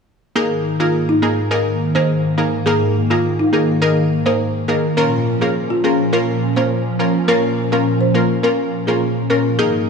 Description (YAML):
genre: dancehall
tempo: 104 BPM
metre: 4/4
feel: straight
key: unclear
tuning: A4 = 440 Hz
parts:
  - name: folk marimba with medium mallets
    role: melody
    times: 0.4-9.7 s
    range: Eb4 to C5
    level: -20 LUFS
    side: left 1 dB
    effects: analog delay
  - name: analog pluck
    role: accompaniment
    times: 0.4-9.9 s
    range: Bb3 to Bb4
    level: -19 LUFS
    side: right 1 dB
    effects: chorus
  - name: hollow soft pad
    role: sustained chords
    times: 0.4-9.9 s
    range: Ab2 to Db4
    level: -19 LUFS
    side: equal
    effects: ensemble chorus
room: light reverb, small room ambience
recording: studio ambience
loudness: -15 LUFS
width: side -5 dB against mid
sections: 0.4-9.9 A section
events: none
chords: 0.4 Absus2; 5.0 Bbm